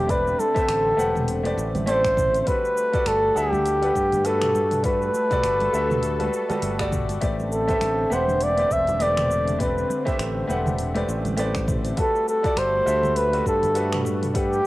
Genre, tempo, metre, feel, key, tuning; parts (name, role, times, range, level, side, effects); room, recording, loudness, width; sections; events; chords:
sunset chillout; 101 BPM; 4/4; swing 58% on 16ths; A dorian; A4 = 440 Hz
mellow flugelhorn; melody; 0.0-14.7 s; G4 to E5; -22 LUFS; equal; cassette tape, tape echo
clear concert grand piano; accompaniment; 0.0-14.7 s; G3 to F#5; -28 LUFS; left 1 dB; auto-pan, cassette tape, tape echo
lush unison pad; sustained chords; 0.0-14.7 s; D3 to A4; -32 LUFS; equal; chorus, cassette tape
modern bright fingered electric bass; bass; 0.0-14.6 s; E1 to G2; -28 LUFS; equal
deep house drum kit; drums; 0.1-14.6 s; finger snaps, hi-hat, shaker, toms; -33 LUFS; equal
electronic kick drum; drums; 0.1-14.5 s; -27 LUFS; equal; overdrive
congas; percussion; 0.4-14.2 s; -33 LUFS; right 2 dB
moderate spring reverb, RT60 1.5 s, digital ambience; home recording on cassette; -20 LUFS; side -18 dB against mid
0.0-14.7 A section
0.0 Am11; 2.5 Gmaj9; 7.2 Am11; 12.0 Gmaj9